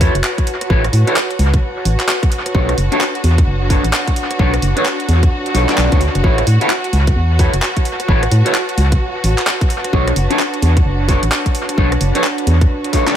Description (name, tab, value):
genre	UK garage, two-step garage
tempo	130 BPM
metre	4/4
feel	swing 62% on 16ths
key	unclear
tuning	A4 = 437 Hz
part	dark chamber violin section	sustained chords	0.0-13.2 s	F#4	-25 LUFS	right 2 dB	sidechain pumping
part	electric guitar at the edge of break-up	stabs	0.0-13.2 s	D4 to D5	-20 LUFS	equal	phaser, tape echo
part	organ-like FM bass	bass	0.0-12.7 s	F#1 to A2	-14 LUFS	equal	sidechain pumping
part	electronic kick drum	drums	0.0-13.0 s	none	-15 LUFS	equal	overdrive, studio reverb
part	garage drum kit	drums	0.0-13.1 s	handclaps, hi-hat, rim click	-21 LUFS	equal	overdrive, studio reverb, analog delay
part	airy breathy pad	texture	0.0-13.2 s	D4 to A5	-24 LUFS	equal	chorus, sidechain pumping
room	little or no reverb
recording	echo-heavy mix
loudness	-12 LUFS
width	side -10 dB against mid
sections	0.0-13.2 A section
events	none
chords	0.0 A69; 2.3 Bm9; 6.2 A69; 9.7 Bm9